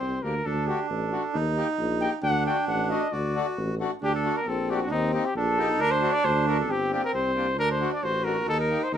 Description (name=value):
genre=klezmer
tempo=135 BPM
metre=2/4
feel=straight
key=D phrygian dominant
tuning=A4 = 440 Hz
part: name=mellow cornet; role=melody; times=0.0-9.0 s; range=Eb4 to G5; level=-27 LUFS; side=left 1 dB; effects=none
part: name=accordion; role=second line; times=0.0-9.0 s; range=B3 to F#4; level=-28 LUFS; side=right 3 dB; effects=none
part: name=mellow tuba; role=bass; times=0.0-9.0 s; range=G1 to Eb2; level=-30 LUFS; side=equal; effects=none
part: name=accordion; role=accompaniment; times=0.2-8.8 s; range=A3 to G4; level=-32 LUFS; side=left 4 dB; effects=none
room=moderate studio reverb, RT60 0.6 s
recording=band playing live in one room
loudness=-23 LUFS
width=side -9 dB against mid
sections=0.0-4.0 A section; 4.0-9.0 B section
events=cornet solo 0.0-4.0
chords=0.5 D; 1.3 Eb; 2.2 D; 4.9 Eb; 5.8 D; 6.7 Gm; 7.6 D; 8.5 Eb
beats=0.01 | 0.45 0.90 | 1.34 1.79 | 2.23 2.68 | 3.12 3.57 | 4.01 4.46 | 4.91 5.35 | 5.80 6.24 | 6.69 7.13 | 7.58 8.03 | 8.47 8.92